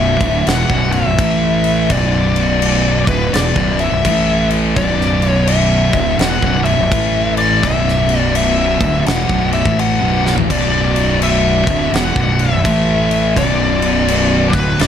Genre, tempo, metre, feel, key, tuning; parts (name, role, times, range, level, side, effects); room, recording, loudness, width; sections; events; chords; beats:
stoner and doom metal; 84 BPM; 4/4; swing 63% on 8ths; B minor; A4 = 440 Hz
fuzz lead guitar; melody; 0.0-14.9 s; B4 to F#5; -18 LUFS; left 3 dB; wah, distortion, slapback echo
tonewheel organ; sustained chords; 0.0-14.9 s; A3 to D5; -28 LUFS; equal; slow rotary speaker
thick fuzz guitar; riff; 0.0-14.9 s; B1 to A3; -20 LUFS; left 9 dB; distortion
thick fuzz guitar; riff; 0.0-14.9 s; B1 to A3; -19 LUFS; right 8 dB; distortion
fuzz fingered electric bass; bass; 0.0-14.9 s; B0 to A1; -20 LUFS; equal; overdrive
big rock drum kit; drums; 0.2-14.9 s; crash cymbal, kick drum, snare drum, splash cymbal, toms; -20 LUFS; left 1 dB
light reverb; -12 LUFS; side -9 dB against mid
0.0-14.9 A section
drum fill 10.1-10.5
0.0 Bm; 1.2 A5; 1.9 Bm; 4.1 A5; 4.8 Bm; 6.9 A5; 7.6 Bm; 12.7 A5; 13.4 Bm
0.47 1.19 | 1.91 2.62 3.34 4.06 | 4.77 5.49 6.21 6.92 | 7.64 8.36 9.07 9.79 | 10.50 11.22 11.94 12.65 | 13.37 14.08 14.80